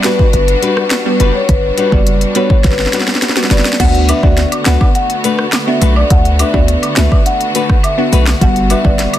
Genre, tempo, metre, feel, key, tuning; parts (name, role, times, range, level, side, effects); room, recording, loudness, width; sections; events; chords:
dancehall; 104 BPM; 4/4; straight; D major; A4 = 440 Hz
marimba with medium mallets; melody; 0.0-9.0 s; B4 to F#5; -17 LUFS; left 2 dB; tape echo
glassy wavetable pluck; accompaniment; 0.0-9.2 s; G3 to F#4; -18 LUFS; right 1 dB; chorus, sidechain pumping
rich studio string section; sustained chords; 0.0-9.2 s; D3 to F#4; -21 LUFS; equal; sidechain pumping
nylon-string guitar; arpeggios; 0.0-8.9 s; G3 to B4; -19 LUFS; left 6 dB
afro-pop drum kit; drums; 0.0-9.2 s; crash cymbal, handclaps, hi-hat, kick drum, rim click, snare drum; -13 LUFS; equal
hard-hitting 808-style bass; bass; 0.3-9.1 s; F#1 to D2; -13 LUFS; equal
cabasa and woodblock; percussion; 4.1-9.2 s; -24 LUFS; right 1 dB
small room ambience; dense, heavily limited modern master; -10 LUFS; side -12 dB against mid
0.0-3.8 A section; 3.8-9.2 B section
drum fill 2.6-3.8
0.0 Gmaj7; 3.8 D6; 8.4 Gmaj7